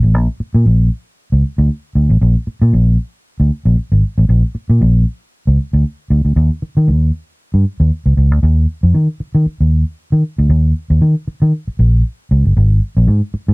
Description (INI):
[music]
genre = funk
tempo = 116 BPM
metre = 4/4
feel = swing 56% on 16ths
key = Bb mixolydian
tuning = A4 = 439 Hz
[part]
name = vintage muted fingered electric bass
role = solo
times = 0.0-13.5 s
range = G1 to Eb3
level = -10 LUFS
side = equal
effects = none
[sound]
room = moderate booth ambience, RT60 0.2 s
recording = dry, close 1970s-style studio recording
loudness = -12 LUFS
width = side -29 dB against mid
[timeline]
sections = 0.0-8.4 A section; 8.4-13.5 B section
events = none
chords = none